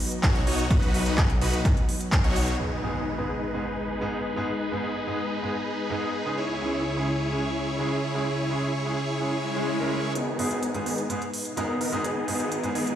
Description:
EDM, festival progressive house; 127 BPM; 4/4; straight; G# minor; A4 = 440 Hz
lush unison pad; sustained chords; 0.0-13.0 s; C#2 to D#5; -32 LUFS; left 1 dB; chorus, sidechain pumping
big-room dance drum kit; drums; 0.0-2.6, 10.2-13.0 s; handclaps, hi-hat; -33 LUFS; right 1 dB; overdrive, low-pass filter on hats, low-pass filter on snare, low-pass filter on room
supersaw chords; riff; 0.2-12.9 s; B3 to C#5; -29 LUFS; equal; sidechain pumping, low-pass filter, dub echo
wide detuned saw bass; bass; 0.2-2.6, 10.2-12.9 s; G#1 to B1; -30 LUFS; equal; chorus, sidechain pumping, high-pass filter
electronic kick drum; drums; 0.2-2.2 s; -23 LUFS; equal; overdrive
impact, swell and riser; sound effects; 2.6-4.5, 9.4-13.0 s; -37 LUFS; left 1 dB
bright grand piano; accompaniment; 2.8-12.8 s; G#2 to A#4; -31 LUFS; right 1 dB; sidechain pumping, dub echo
light reverb, digital ambience; played on a big sound system in a bare room, stone room reverb; -24 LUFS; side -10 dB against mid
0.0-2.6 A section; 2.6-10.2 B section; 10.2-13.0 C section
drop 0.0-2.6; band accent 2.1; impact 2.6-4.5; filter sweep on supersaw synth 2.6-10.2; swell 9.4-10.2; build-up 10.2-13.0
0.0 B; 2.6 G#m; 6.4 C#m; 10.2 G#m
0.23 | 0.71 1.18 1.65 2.12 | 2.60 3.07 3.54 4.01 | 4.49 4.96 5.43 5.90 | 6.38 6.85 7.32 7.79 | 8.27 8.74 9.21 9.68 | 10.15 10.63 11.10 11.57 | 12.04 12.52

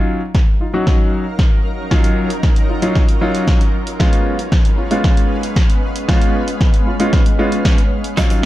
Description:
dance-pop; 115 BPM; 4/4; straight; A4 = 442 Hz
clear grand piano; accompaniment; 0.0-8.5 s; Gb3 to Gb4; -19 LUFS; equal; sidechain pumping
shimmering ambient pad; sustained chords; 0.3-8.5 s; Gb3 to F5; -24 LUFS; equal; chorus, built-in reverb, sidechain pumping
punchy analog drum machine; drums; 0.3-8.4 s; hi-hat, kick drum, snare drum; -14 LUFS; equal
twelve-string electric guitar; riff; 8.2-8.3 s; Eb4; -23 LUFS; right 6 dB; ensemble chorus
tube shaker; percussion; 8.2-8.4 s; -38 LUFS; left 7 dB
digital ambience; dark, warm production; -13 LUFS; side -15 dB against mid
0.0-8.5 A section
build-up 0.0-8.5; drum fill 0.0-8.5
0.0 Ebm9; 4.0 Db7
0.35 0.87 1.39 | 1.91 2.43 2.96 3.48 | 4.00 4.52 5.04 5.56 | 6.09 6.61 7.13 7.65 | 8.17

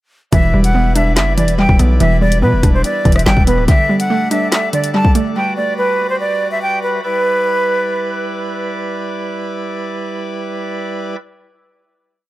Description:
hip hop, drill; 143 BPM; 4/4; half-time; E minor; A4 = 440 Hz
bright silver concert flute; melody; 0.3-8.3 s; B4 to A5; -17 LUFS; equal; tape echo
hollow square pluck; accompaniment; 0.3-5.4 s; D3 to D4; -17 LUFS; right 2 dB; chorus, tape echo
pipe organ, cornet; sustained chords; 0.3-11.2 s; G3 to D5; -24 LUFS; right 2 dB
hard-hitting 808-style bass; bass; 0.3-3.7 s; D1 to B2; -14 LUFS; equal
drill drum kit; drums; 0.3-5.2 s; handclaps, hi-hat, kick drum, rim click, snare drum; -15 LUFS; equal; tape echo
little or no reverb; echo-heavy mix; -13 LUFS; side -16 dB against mid
0.3-7.0 hook; 7.0-10.4 final chord
0.3 Em7; 3.7 Dsus4; 5.4 Gmaj7; 7.0 Em7
| 0.33 0.74 1.16 1.58 | 2.00 2.42 2.84 3.26 | 3.68 4.10 4.52 4.94 | 5.36 5.78 6.20 6.62 | 7.04 7.46 7.88 8.30 | 8.72 9.14 9.56 9.97

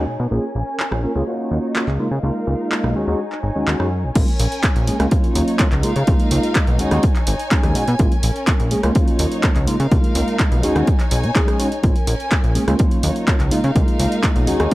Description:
filtered disco house; 125 BPM; 4/4; straight; Bb minor; A4 = 435 Hz
overdriven tine electric piano; accompaniment; 0.0-14.7 s; Gb3 to Bb4; -22 LUFS; equal; phaser, sidechain pumping, low-pass filter
warm studio violin section; sustained chords; 0.0-14.7 s; Db4 to G#5; -27 LUFS; equal; sidechain pumping, low-pass filter
plucky analog bass; bass; 0.0-14.7 s; G#1 to Db3; -20 LUFS; equal; tube saturation, sidechain pumping, low-pass filter
punchy analog drum machine; drums; 0.8-14.7 s; crash cymbal, handclaps, hi-hat, rim click; -25 LUFS; equal; sidechain pumping on hats, sidechain pumping on cymbals
electronic kick drum; drums; 4.2-14.7 s; -17 LUFS; equal; overdrive
digital ambience; -16 LUFS; side -18 dB against mid
0.0-4.2 A section; 4.2-14.7 B section
filter sweep 0.0-4.2; drop 4.2-14.7
0.3 Bbm7; 1.3 Ebm7; 2.0 Db69; 3.0 B69; 4.2 Bbm7; 5.1 Ebm7; 5.8 Db69; 6.8 B69; 8.0 Bbm7; 9.0 Ebm7; 9.7 Db69; 10.6 B69; 11.8 Bbm7; 12.8 Ebm7; 13.5 Db69
| 0.32 0.80 1.28 1.76 | 2.24 2.72 3.20 3.68 | 4.16 4.64 5.12 5.60 | 6.08 6.56 7.04 7.52 | 8.00 8.48 8.96 9.44 | 9.92 10.40 10.88 11.36 | 11.84 12.32 12.80 13.28 | 13.76 14.24 14.72

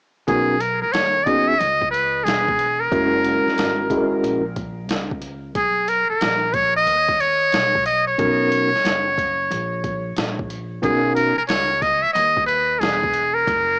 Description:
hip hop, jazz-hop; 91 BPM; 4/4; swing 65% on 16ths; B major; A4 = 438 Hz
trumpet with metal mute; melody; 0.3-13.8 s; G#4 to E5; -18 LUFS; equal; cassette tape, tape echo
mellow tine electric piano; accompaniment; 0.3-11.3 s; G#3 to A#4; -19 LUFS; equal; medium stereo tremolo, cassette tape
upright bass; bass; 0.3-13.8 s; E1 to D#2; -31 LUFS; equal
boom bap sampler-style drum kit; drums; 0.3-13.7 s; hi-hat, kick drum, snare drum; -26 LUFS; equal
moderate booth ambience, RT60 0.2 s; home recording on cassette, small speaker sound; -17 LUFS; side -37 dB against mid
0.3-10.8 A section; 10.8-13.8 A section
0.3 Badd9; 2.9 F#7; 5.6 Bmaj9
| 0.28 0.94 1.60 2.26 | 2.92 3.58 4.24 4.90 | 5.55 6.21 6.87 7.53 | 8.19 8.85 9.51 10.17 | 10.83 11.49 12.15 12.81 | 13.47

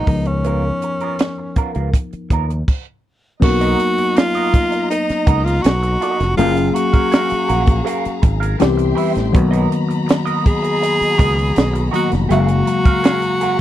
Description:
lush 1970s-style soul; 81 BPM; 4/4; straight; A4 = 439 Hz
breathy tenor saxophone; melody; 0.0-13.6 s; C#4 to G#4; -19 LUFS; equal
tine electric piano; accompaniment; 0.0-13.6 s; C#3 to E#5; -20 LUFS; left 4 dB; phaser
electric guitar through a small old amp; riff; 0.0-13.6 s; B3 to F#5; -24 LUFS; right 7 dB; wah
fingered electric bass; bass; 0.1-12.6 s; E#1 to D#2; -19 LUFS; equal
compact cocktail drum kit; drums; 0.1-13.6 s; crash cymbal, hi-hat, kick drum, snare drum; -15 LUFS; right 1 dB
warm studio string section; sustained chords; 3.4-13.6 s; F#4 to C6; -29 LUFS; left 3 dB
little or no reverb; dry, close 1970s-style studio recording; -14 LUFS; side -12 dB against mid
0.0-3.4 A section; 3.4-13.6 B section
stop 2.7-3.4
0.1 C#13; 3.4 Bmaj7; 6.4 F#maj9; 8.6 Cmaj7; 9.3 Bmaj7; 12.3 F#maj9
| 0.45 1.19 1.94 2.68 | 3.42 4.16 4.90 5.64 | 6.38 7.12 7.87 8.60 | 9.34 10.08 10.82 11.56 | 12.30 13.04

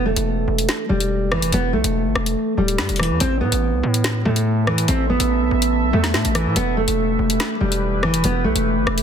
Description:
hip hop, drill; 143 BPM; 4/4; half-time; A4 = 440 Hz
nylon-string guitar; melody; 0.0-9.0 s; E3 to C4; -20 LUFS; right 1 dB; low-pass filter, digital delay
distorted 808-style bass; bass; 0.0-9.0 s; D1 to A2; -22 LUFS; left 1 dB; distortion
drill drum kit; drums; 0.2-9.0 s; hi-hat, rim click, snare drum; -23 LUFS; left 2 dB
deep dark ambient pad; sustained chords; 4.2-9.0 s; E3 to E5; -27 LUFS; right 2 dB; chorus, built-in reverb
digital ambience; dense, heavily limited modern master; -17 LUFS; side -8 dB against mid
0.0-9.0 A section
0.0 Em; 3.2 A5; 6.6 Em
0.27 0.69 1.11 | 1.53 1.95 2.37 2.79 | 3.21 3.62 4.04 4.46 | 4.88 5.30 5.72 6.14 | 6.56 6.98 7.40 7.82 | 8.24 8.66

